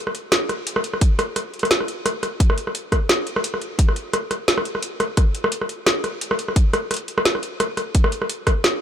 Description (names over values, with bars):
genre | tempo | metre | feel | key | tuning
drum and bass | 173 BPM | 4/4 | swing 55% on 16ths, half-time | none | none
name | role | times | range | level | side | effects
drum and bass drum kit | drums | 0.1-8.7 s | hi-hat, rim click, snare drum | -20 LUFS | equal | none
electronic kick drum | drums | 1.0-8.5 s | none | -17 LUFS | equal | none
room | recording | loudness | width
light reverb | none | -19 LUFS | side -9 dB against mid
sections
0.0-8.8 A section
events
none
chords
none